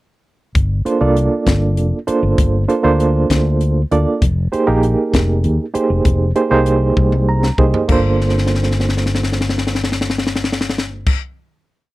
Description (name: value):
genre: electric jazz fusion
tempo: 65 BPM (dotted quarters)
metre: 6/8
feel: straight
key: G minor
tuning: A4 = 439 Hz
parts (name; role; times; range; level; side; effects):
- fretless electric bass; bass; 0.5-11.2 s; F1 to Eb2; -17 LUFS; left 1 dB; none
- crisp fusion drum kit; drums; 0.6-11.2 s; crash cymbal, hi-hat, kick drum, snare drum, toms; -18 LUFS; left 1 dB; none
- reed electric piano; accompaniment; 0.9-11.2 s; Bb3 to Bb5; -17 LUFS; right 3 dB; fast tremolo
room: little or no reverb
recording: dry, close 1970s-style studio recording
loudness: -14 LUFS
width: side -18 dB against mid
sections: 0.6-7.9 groove; 7.9-11.6 final chord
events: drum fill 7.0-7.9, 8.2-11.1; reed electric piano fill 7.0-7.9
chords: 0.6 Gm11; 4.2 Fm11; 7.9 Gm11